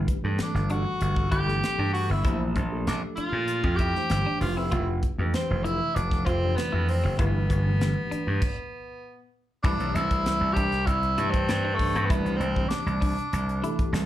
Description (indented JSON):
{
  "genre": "electric jazz fusion",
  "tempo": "97 BPM",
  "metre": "4/4",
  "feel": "straight",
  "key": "G major, C major from 9.6 s",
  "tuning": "A4 = 439 Hz",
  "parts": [
    { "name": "mellow tine electric piano", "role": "accompaniment", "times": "0.0-14.1 s", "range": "E3 to D5", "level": "-34 LUFS", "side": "right 1 dB", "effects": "medium stereo tremolo, slapback echo" },
    { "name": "clean electric guitar", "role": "stabs", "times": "0.0-13.9 s", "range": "B3 to F4", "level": "-36 LUFS", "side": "left 2 dB", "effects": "analog chorus, slapback echo" },
    { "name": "slap bass", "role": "bass", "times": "0.0-14.1 s", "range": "F1 to Bb2", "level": "-26 LUFS", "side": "equal", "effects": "none" },
    { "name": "crisp fusion drum kit", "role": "drums", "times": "0.1-14.1 s", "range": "crash cymbal, hi-hat, kick drum, snare drum", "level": "-29 LUFS", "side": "equal", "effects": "none" },
    { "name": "bright tenor saxophone", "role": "melody", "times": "0.4-14.1 s", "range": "A3 to G4", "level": "-29 LUFS", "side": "equal", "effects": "slapback echo" }
  ],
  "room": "light reverb",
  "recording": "live gig heard through the venue's PA, club reverb",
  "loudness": "-23 LUFS",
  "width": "side -13 dB against mid",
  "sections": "0.0-9.6 A section; 9.6-14.1 B section",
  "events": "stop 8.4-9.6",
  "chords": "0.0 Gmaj9; 2.2 Bbmaj9; 4.4 Fmaj9; 7.2 Gadd9; 9.6 Cmaj9"
}